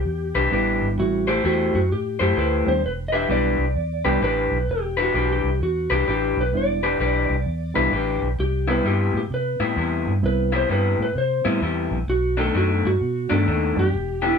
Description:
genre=electric blues shuffle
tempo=130 BPM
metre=4/4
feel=swing 64% on 8ths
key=E minor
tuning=A4 = 440 Hz
part: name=electric slide guitar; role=melody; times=0.0-14.4 s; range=E4 to E5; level=-25 LUFS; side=equal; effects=none
part: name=vintage muted fingered electric bass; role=bass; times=0.0-14.3 s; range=E1 to C3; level=-24 LUFS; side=right 1 dB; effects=none
part: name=electric guitar through a small old amp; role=riff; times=0.3-14.4 s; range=B2 to C5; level=-22 LUFS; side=left 4 dB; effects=none
part: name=overdriven reed electric piano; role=accompaniment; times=0.5-13.9 s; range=D#3 to G4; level=-25 LUFS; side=right 3 dB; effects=none
room=moderate studio ambience, RT60 0.5 s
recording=band playing live in one room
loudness=-19 LUFS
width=side -6 dB against mid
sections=0.0-14.4 A section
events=none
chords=0.0 Em7; 1.0 Am7; 2.8 Em7; 8.4 Cmaj7; 12.1 B7#9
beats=0.06 0.52 | 0.98 1.45 1.91 2.37 | 2.83 3.30 3.76 4.22 | 4.68 5.15 5.61 6.07 | 6.53 7.00 7.46 7.92 | 8.38 8.85 9.31 9.77 | 10.23 10.69 11.16 11.62 | 12.08 12.54 13.00 13.47 | 13.93

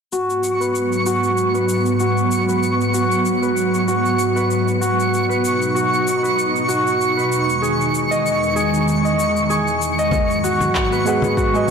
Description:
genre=sunset chillout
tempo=96 BPM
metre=4/4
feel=swing 55% on 16ths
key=G# minor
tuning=A4 = 440 Hz
part: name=ethereal airy pad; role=sustained chords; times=0.3-11.7 s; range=E2 to D#4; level=-20 LUFS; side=right 1 dB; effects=ensemble chorus, built-in reverb
part: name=Celtic harp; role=arpeggios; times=0.1-11.7 s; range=F#4 to D#5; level=-20 LUFS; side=equal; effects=low-pass filter, tape echo
part: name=electronic cabasa and handclaps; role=drums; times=0.1-11.7 s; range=none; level=-30 LUFS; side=left 4 dB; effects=overdrive
part: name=twinkling granular texture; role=texture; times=0.4-11.7 s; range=C#6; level=-23 LUFS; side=right 1 dB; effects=built-in reverb
part: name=electronic kick drum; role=drums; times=10.1-11.5 s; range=none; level=-23 LUFS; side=equal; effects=none
part: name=congas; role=percussion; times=10.1-11.7 s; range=none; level=-26 LUFS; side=left 3 dB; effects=none
part: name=dark baby grand piano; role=accompaniment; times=11.1-11.7 s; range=G#3 to F#5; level=-19 LUFS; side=right 3 dB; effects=auto-pan
room=moderate lush hall reverb, RT60 1.9 s, studio reverb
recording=blown-out, overdriven recording, overdrive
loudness=-16 LUFS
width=side -6 dB against mid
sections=0.1-11.7 A section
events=filter sweep on harp 0.1-11.7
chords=0.1 G#m7; 5.1 B; 7.3 Emaj7; 10.1 G#m7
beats=| 0.12 0.75 1.37 2.00 | 2.62 3.25 3.87 4.50 | 5.12 5.75 6.37 7.00 | 7.62 8.25 8.87 9.50 | 10.12 10.75 11.37

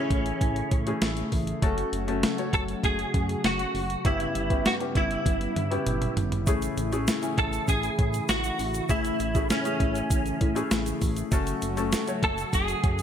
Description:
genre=1980s-style pop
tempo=99 BPM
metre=4/4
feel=straight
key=unclear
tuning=A4 = 440 Hz
part: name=direct-recorded clean electric guitar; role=melody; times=0.0-13.0 s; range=C#4 to A4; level=-29 LUFS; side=right 1 dB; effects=ensemble chorus, digital delay
part: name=warm grand piano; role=accompaniment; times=0.0-13.0 s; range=G2 to G#5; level=-31 LUFS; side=left 4 dB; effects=wide subtle chorus
part: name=brassy analog pad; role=sustained chords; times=0.0-13.0 s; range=C#3 to F#4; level=-34 LUFS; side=right 2 dB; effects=chorus
part: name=chorused synth bass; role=bass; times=0.1-13.0 s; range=F#1 to A2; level=-32 LUFS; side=equal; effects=none
part: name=clean 12-bit digital drum machine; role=drums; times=0.1-13.0 s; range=hi-hat, kick drum, snare drum, toms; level=-27 LUFS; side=equal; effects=gated reverb
part: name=egg shaker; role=percussion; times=6.5-13.0 s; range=none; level=-41 LUFS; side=right 12 dB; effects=none
room=light reverb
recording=bright 1980s-style digital production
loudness=-24 LUFS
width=side -9 dB against mid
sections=0.0-13.0 A section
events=drum fill 5.3-6.5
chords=0.0 Amaj7; 1.6 F#m; 4.0 Em6/G; 6.5 Amaj7; 11.3 F#m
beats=0.41 1.02 | 1.62 2.23 2.84 3.44 | 4.05 4.65 5.26 5.87 | 6.47 7.08 7.68 8.29 | 8.90 9.50 10.11 10.71 | 11.32 11.93 12.53

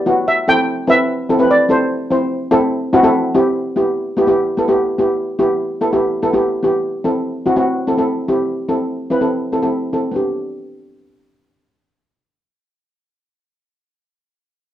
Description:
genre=calypso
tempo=146 BPM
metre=4/4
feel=straight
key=G major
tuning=A4 = 440 Hz
part: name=steel pan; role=melody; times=0.0-3.1 s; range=C5 to G5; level=-15 LUFS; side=equal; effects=none
part: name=steel pan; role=accompaniment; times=0.1-14.1 s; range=B3 to C5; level=-15 LUFS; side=equal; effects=none
room=moderate studio reverb, RT60 0.6 s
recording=dark, warm production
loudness=-14 LUFS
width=side -12 dB against mid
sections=0.0-3.5 A section; 3.5-10.1 B section; 10.1-13.4 C section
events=none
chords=0.3 Am; 3.5 Em; 6.8 Am; 10.1 G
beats=| 0.28 0.68 1.09 1.50 | 1.91 2.32 2.73 3.14 | 3.55 3.96 4.37 4.78 | 5.19 5.60 6.01 6.43 | 6.84 7.25 7.66 8.08 | 8.49 8.90 9.31 9.73 | 10.14 10.55 10.97 11.38 | 11.79 12.21 12.62 13.04

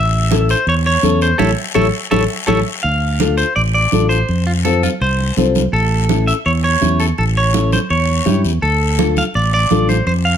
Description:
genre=latin, cumbia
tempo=166 BPM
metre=4/4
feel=straight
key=D harmonic minor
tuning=A4 = 440 Hz
part: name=clean electric guitar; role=melody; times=0.0-10.4 s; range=F4 to F5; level=-18 LUFS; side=right 1 dB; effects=spring reverb, slapback echo
part: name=fingered electric bass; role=bass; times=0.0-10.4 s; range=A1 to G2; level=-16 LUFS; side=equal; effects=none
part: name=nylon-string guitar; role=accompaniment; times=0.3-10.0 s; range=C4 to A4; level=-19 LUFS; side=left 8 dB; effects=none
part: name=congas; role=percussion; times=0.3-10.3 s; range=none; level=-21 LUFS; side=right 8 dB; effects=none
part: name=guiro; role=percussion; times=0.3-10.4 s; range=none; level=-28 LUFS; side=left 8 dB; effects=none
room=light reverb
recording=none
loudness=-13 LUFS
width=side -9 dB against mid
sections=0.0-2.8 A section; 2.8-10.4 B section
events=band accent 1.4-2.8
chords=0.0 A7; 2.8 Dm; 4.3 F; 5.7 A7; 8.6 Dm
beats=0.31 0.67 1.03 | 1.40 1.76 2.12 2.48 | 2.84 3.20 3.56 3.92 | 4.29 4.65 5.01 5.37 | 5.73 6.09 6.46 6.82 | 7.18 7.54 7.90 8.27 | 8.63 8.99 9.35 9.71 | 10.07

